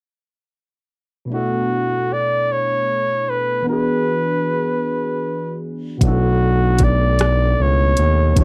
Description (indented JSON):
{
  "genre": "slow six-eight R&B",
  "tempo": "51 BPM (dotted quarters)",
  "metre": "6/8",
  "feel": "straight",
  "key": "B dorian",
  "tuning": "A4 = 437 Hz",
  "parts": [
    { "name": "breathy flugelhorn", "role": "melody", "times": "1.3-8.4 s", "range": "F#4 to D5", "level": "-22 LUFS", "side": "equal", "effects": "slapback echo" },
    { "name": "barky tine electric piano", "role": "accompaniment", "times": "1.3-8.4 s", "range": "B2 to A4", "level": "-26 LUFS", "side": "equal", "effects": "overdrive, phaser" },
    { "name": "smooth gliding synth bass", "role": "bass", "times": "6.0-8.4 s", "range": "B1 to E2", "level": "-18 LUFS", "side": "equal", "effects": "none" },
    { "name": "smooth R&B drum kit", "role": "drums", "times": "6.0-8.4 s", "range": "hi-hat, kick drum, rim click", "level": "-18 LUFS", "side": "equal", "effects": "none" }
  ],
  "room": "little or no reverb",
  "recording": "dry, close 1970s-style studio recording",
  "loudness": "-18 LUFS",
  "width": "mono",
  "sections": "1.3-8.4 A section",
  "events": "none",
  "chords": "1.3 Bm11; 3.7 E9; 6.0 Bm11",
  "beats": "| 1.30 2.48 | 3.66 4.83 | 6.01 7.19 | 8.36"
}